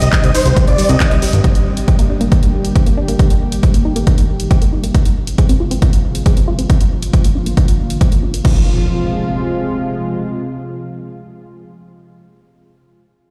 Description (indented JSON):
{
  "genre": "uplifting trance",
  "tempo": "137 BPM",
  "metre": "4/4",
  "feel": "straight",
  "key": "F dorian",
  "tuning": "A4 = 440 Hz",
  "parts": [
    { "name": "big supersaw lead", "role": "melody", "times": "0.0-1.2 s", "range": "C5 to Eb5", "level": "-23 LUFS", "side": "equal", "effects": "vintage 12-bit sampler grit, sidechain pumping, delay" },
    { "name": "lush unison pad", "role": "sustained chords", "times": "0.0-11.7 s", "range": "C3 to G4", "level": "-24 LUFS", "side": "equal", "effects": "chorus, sidechain pumping" },
    { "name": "fat analog bass", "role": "bass", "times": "0.0-1.4 s", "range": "G1 to C2", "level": "-15 LUFS", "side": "equal", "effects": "sidechain pumping" },
    { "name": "house drum kit", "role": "drums", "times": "0.0-8.5 s", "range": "crash cymbal, handclaps, hi-hat", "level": "-28 LUFS", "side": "equal", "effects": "none" },
    { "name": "maracas", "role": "percussion", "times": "0.0-1.4 s", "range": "none", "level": "-30 LUFS", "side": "equal", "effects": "none" },
    { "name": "unison pluck", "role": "arpeggios", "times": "0.1-8.7 s", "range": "D3 to Ab4", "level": "-25 LUFS", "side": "equal", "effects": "sidechain pumping, delay" },
    { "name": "electronic kick drum", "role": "drums", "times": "0.1-8.5 s", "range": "none", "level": "-15 LUFS", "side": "equal", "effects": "none" },
    { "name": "impact", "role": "sound effects", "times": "8.4-11.7 s", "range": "none", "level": "-24 LUFS", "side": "equal", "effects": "none" }
  ],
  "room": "digital ambience",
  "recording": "played on a big sound system in a bare room, large studio reverb",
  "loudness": "-14 LUFS",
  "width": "mono",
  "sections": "0.0-8.4 A section; 8.4-12.0 B section",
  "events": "filter sweep on synth pluck 0.0-8.4",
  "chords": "0.0 Cm; 1.4 Gm; 3.2 Eb; 4.9 Fm; 6.7 Bb; 8.4 Fm"
}